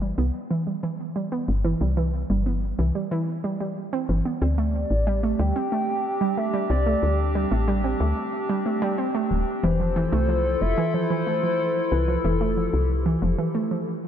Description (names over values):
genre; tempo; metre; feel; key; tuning
IDM; 92 BPM; 4/4; straight; unclear; A4 = 440 Hz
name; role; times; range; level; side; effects
warbly dusty pluck; arpeggios; 0.0-13.9 s; E3 to C4; -26 LUFS; right 2 dB; chorus, digital delay
woody FM bass; bass; 0.0-13.4 s; D1 to D2; -24 LUFS; left 1 dB; none
warbly nostalgic lead; melody; 4.4-13.5 s; A4 to G5; -28 LUFS; left 2 dB; chorus, tape echo
warbly tape-like pad; sustained chords; 4.8-13.5 s; C4 to A4; -29 LUFS; left 2 dB; chorus, built-in reverb
room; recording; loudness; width
moderate lush hall reverb, RT60 2.8 s; dark, warm production; -22 LUFS; side -9 dB against mid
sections
0.0-14.1 A section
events
break 13.5-14.1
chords
0.0 Cmaj7; 4.4 D7sus4; 9.6 Fmaj7